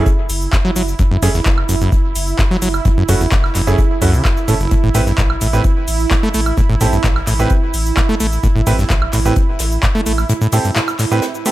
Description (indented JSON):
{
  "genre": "acid house",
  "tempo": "129 BPM",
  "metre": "4/4",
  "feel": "straight",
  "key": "unclear",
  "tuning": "A4 = 439 Hz",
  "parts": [
    { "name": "warm analog pad", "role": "sustained chords", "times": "0.0-11.5 s", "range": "E4", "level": "-23 LUFS", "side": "right 7 dB", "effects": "chorus, sidechain pumping" },
    { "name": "acid bass, saw", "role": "riff", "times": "0.0-11.5 s", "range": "F#1 to A3", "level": "-17 LUFS", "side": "equal", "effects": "none" },
    { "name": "bright baby grand piano", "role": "stabs", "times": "0.0-11.5 s", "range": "A3 to B4", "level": "-22 LUFS", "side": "right 4 dB", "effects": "ping-pong delay" },
    { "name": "electro analog drum machine", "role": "drums", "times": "0.1-11.5 s", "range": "handclaps, hi-hat, shaker, woodblock", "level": "-22 LUFS", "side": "equal", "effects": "none" },
    { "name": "electronic kick drum", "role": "drums", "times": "0.1-9.9 s", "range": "none", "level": "-16 LUFS", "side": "equal", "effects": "none" },
    { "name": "modern studio drum kit", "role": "drums", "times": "0.1-11.5 s", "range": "hi-hat, snare drum", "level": "-32 LUFS", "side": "left 3 dB", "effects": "none" },
    { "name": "warm sub bass", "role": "bass", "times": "0.3-10.2 s", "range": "F#1 to C#2", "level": "-20 LUFS", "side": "equal", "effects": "sidechain pumping" }
  ],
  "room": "little or no reverb",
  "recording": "none",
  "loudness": "-13 LUFS",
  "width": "side -15 dB against mid",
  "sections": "0.0-11.5 A section",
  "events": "kick drops out 10.3-11.5",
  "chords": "0.0 F#7(no3); 4.7 A7(no3)"
}